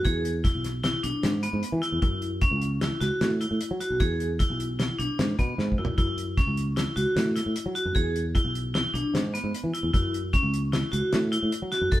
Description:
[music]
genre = progressive instrumental, band music in an uneven meter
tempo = 152 BPM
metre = 5/4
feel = straight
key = F# minor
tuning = A4 = 440 Hz
[part]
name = vibraphone with hard mallets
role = arpeggios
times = 0.0-12.0 s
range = B3 to A4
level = -28 LUFS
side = equal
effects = none
[part]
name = sustaining fretless electric bass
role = bass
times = 0.0-12.0 s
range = B1 to F#3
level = -28 LUFS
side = equal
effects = none
[part]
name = damped 70s drum kit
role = drums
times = 0.1-12.0 s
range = hi-hat, kick drum, snare drum, toms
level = -27 LUFS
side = equal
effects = none
[sound]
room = moderate stone room reverb, RT60 1.1 s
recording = band playing live in one room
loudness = -24 LUFS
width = side -15 dB against mid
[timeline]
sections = 0.0-12.0 A section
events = drum fill 5.6-6.0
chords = 0.1 E7; 2.0 F#m7; 4.0 E7; 6.0 F#m7; 8.0 E7; 9.9 F#m7

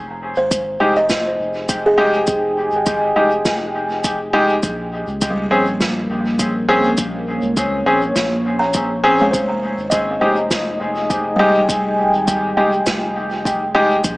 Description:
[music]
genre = ambient dub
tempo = 102 BPM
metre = 4/4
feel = straight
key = F minor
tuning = A4 = 439 Hz
[part]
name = soft dub sub bass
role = bass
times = 0.0-14.2 s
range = F1 to Db2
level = -29 LUFS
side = equal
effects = tube saturation
[part]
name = deep dark ambient pad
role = sustained chords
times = 1.4-14.2 s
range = Bb3 to Ab5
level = -21 LUFS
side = equal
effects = chorus, built-in reverb
[part]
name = buzzing kalimba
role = arpeggios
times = 0.4-13.9 s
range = G3 to Bb5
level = -22 LUFS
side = right 1 dB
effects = dub echo
[part]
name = electronic kick drum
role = drums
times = 0.5-14.2 s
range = none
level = -23 LUFS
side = equal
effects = none
[part]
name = shaker and snare drum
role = drums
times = 0.5-14.2 s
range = none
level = -24 LUFS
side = right 1 dB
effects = dub echo
[part]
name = bright upright piano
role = stabs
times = 0.8-13.9 s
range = Ab3 to Ab4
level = -18 LUFS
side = equal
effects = dub echo
[sound]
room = wet spring reverb, RT60 1.9 s, small room ambience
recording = small speaker sound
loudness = -15 LUFS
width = side -21 dB against mid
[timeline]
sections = 0.0-14.2 A section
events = none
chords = 0.0 Fm7; 4.6 Bbm9; 9.3 Fm7

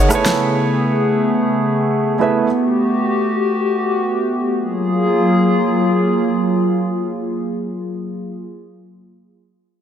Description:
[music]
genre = amapiano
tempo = free time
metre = none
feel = none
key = unclear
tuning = A4 = 439 Hz
[part]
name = warm grand piano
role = accompaniment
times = 0.0-2.5 s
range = A3 to F#5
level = -19 LUFS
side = right 4 dB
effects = none
[part]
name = hollow soft pad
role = sustained chords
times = 0.0-8.4 s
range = C#3 to G#4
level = -16 LUFS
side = equal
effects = chorus
[sound]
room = light reverb, digital ambience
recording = dense, heavily limited modern master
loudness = -15 LUFS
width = side -9 dB against mid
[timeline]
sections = 0.0-4.5 A section; 4.5-8.7 B section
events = none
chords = 0.1 Amaj9; 2.5 Gmaj9; 4.5 F#maj9

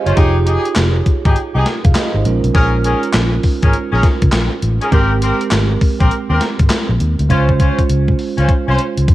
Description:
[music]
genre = R&B, new jack swing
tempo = 101 BPM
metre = 4/4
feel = swing 64% on 16ths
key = unclear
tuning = A4 = 440 Hz
[part]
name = bell-like tine electric piano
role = accompaniment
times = 0.0-9.1 s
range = Ab3 to Ab5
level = -20 LUFS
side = right 6 dB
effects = phaser
[part]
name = clear horn section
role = stabs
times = 0.1-8.8 s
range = C4 to C5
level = -20 LUFS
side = left 2 dB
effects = none
[part]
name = vintage muted fingered electric bass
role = bass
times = 0.1-9.1 s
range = F1 to F2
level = -15 LUFS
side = equal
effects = transformer saturation
[part]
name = gated 80s digital drum machine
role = drums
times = 0.1-9.1 s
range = handclaps, hi-hat, kick drum, snare drum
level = -15 LUFS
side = equal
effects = gated reverb, gated reverb snare, cassette tape
[sound]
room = little or no reverb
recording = home recording on cassette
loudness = -12 LUFS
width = side -15 dB against mid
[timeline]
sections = 0.0-9.1 A section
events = drum fill 7.3-9.1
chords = 0.2 Fm9; 2.2 Bbm7; 4.9 Abmaj9; 7.3 Dbmaj7

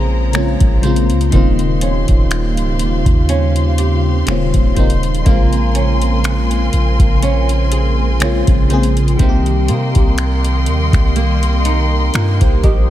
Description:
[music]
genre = contemporary R&B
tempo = 61 BPM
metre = 4/4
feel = swing 54% on 16ths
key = Bb dorian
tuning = A4 = 436 Hz
[part]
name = FM electric piano with soft pad layer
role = accompaniment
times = 0.0-12.9 s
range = Db3 to Eb5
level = -19 LUFS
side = left 2 dB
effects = chorus, phaser
[part]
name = warm studio string section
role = sustained chords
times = 0.0-12.9 s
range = G4 to C6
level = -24 LUFS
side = left 2 dB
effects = none
[part]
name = flamenco guitar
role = arpeggios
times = 0.0-12.9 s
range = C3 to C5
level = -23 LUFS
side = right 5 dB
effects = tape echo
[part]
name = long sustained 808-style bass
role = bass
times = 0.0-12.9 s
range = Db1 to C3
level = -16 LUFS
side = equal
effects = none
[part]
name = booming analog drum machine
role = drums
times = 0.3-12.9 s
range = finger snaps, hi-hat, kick drum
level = -15 LUFS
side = equal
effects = none
[sound]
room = little or no reverb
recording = none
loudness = -12 LUFS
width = side -13 dB against mid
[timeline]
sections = 0.0-12.9 A section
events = none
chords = 0.0 Bbm9; 1.3 Eb13; 5.3 Bbm9; 9.2 Cm7

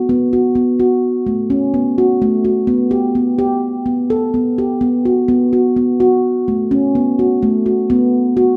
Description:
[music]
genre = contemporary instrumental, contemporary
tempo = 253 BPM (eighths)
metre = 11/8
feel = straight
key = unclear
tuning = A4 = 440 Hz
[part]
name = handpan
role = solo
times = 0.1-8.5 s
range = A3 to A4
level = -15 LUFS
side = equal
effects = none
[sound]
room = moderate recital hall reverb, RT60 1.4 s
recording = none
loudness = -15 LUFS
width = mono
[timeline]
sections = 0.0-7.9 A section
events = none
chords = none

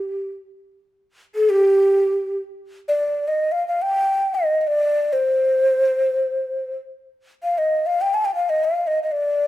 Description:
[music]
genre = Arabic maqam ensemble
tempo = free time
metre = none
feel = none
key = G maqam bayati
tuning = A4 = 440 Hz
[part]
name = breathy mellow ney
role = solo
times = 0.0-9.5 s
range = G4 to A5-48c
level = -18 LUFS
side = equal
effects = none
[sound]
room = moderate recital hall reverb, RT60 1.5 s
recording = minimal, uncompressed stereo recording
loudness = -18 LUFS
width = side -14 dB against mid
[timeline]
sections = 0.0-2.5 A section; 2.5-9.5 A section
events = none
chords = none

